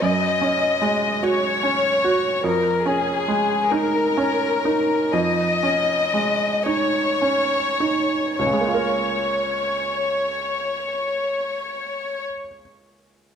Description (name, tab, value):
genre	neoclassical piano and strings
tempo	33-50 BPM (dotted quarters)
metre	6/8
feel	rubato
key	Db major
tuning	A4 = 440 Hz
part	warm chamber violin section	melody	0.0-12.2 s	Ab4 to Eb5	-21 LUFS	left 3 dB	none
part	bright upright piano	accompaniment	0.0-13.4 s	Db2 to Bb4	-23 LUFS	right 4 dB	none
part	Celtic harp	arpeggios	0.0-0.7 s	none	barely audible	none	none
room	wet recital hall reverb, RT60 1.4 s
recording	none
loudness	-19 LUFS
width	side -7 dB against mid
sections	0.0-8.4 A section; 8.4-11.8 B section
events	slowing down 1.2-8.4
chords	0.0 Gbsus2; 2.4 Dbadd9/F; 8.4 Db6